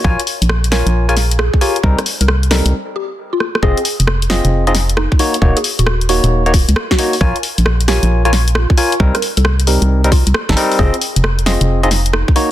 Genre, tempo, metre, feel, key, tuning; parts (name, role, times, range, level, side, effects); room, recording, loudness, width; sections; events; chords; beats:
UK garage, two-step garage; 134 BPM; 4/4; swing 66% on 16ths; F minor; A4 = 440 Hz
mallet-like synth pluck; melody; 0.0-12.5 s; Eb4 to Db5; -22 LUFS; equal; phaser, analog chorus, dub echo
barky tine electric piano; stabs; 0.0-12.5 s; G3 to Ab5; -18 LUFS; left 1 dB; overdrive, dub echo
organ-like FM bass; bass; 0.0-12.2 s; Eb1 to Db2; -14 LUFS; equal
electronic kick drum; drums; 0.0-12.3 s; -13 LUFS; equal; small room reverb
garage drum kit; drums; 0.2-12.5 s; hi-hat, rim click, snare drum; -18 LUFS; left 1 dB; soft clipping on snare, small room reverb
light reverb, digital ambience; dense, heavily limited modern master; -12 LUFS; side -13 dB against mid
0.0-3.6 A section; 3.6-12.5 B section
filter sweep on tine electric piano 0.0-3.6; break 2.7-3.6; drum fill 3.4; drop 3.6-12.5
0.0 Bbm7; 1.8 Cm7; 3.6 Fm7; 5.2 Ebm7; 7.2 Bbm7; 9.0 Cm7; 10.8 Fm7
| 0.04 0.49 0.94 1.39 | 1.84 2.28 2.73 3.18 | 3.63 4.08 4.52 4.97 | 5.42 5.87 6.31 6.76 | 7.21 7.66 8.10 8.55 | 9.00 9.45 9.89 10.34 | 10.79 11.24 11.69 12.13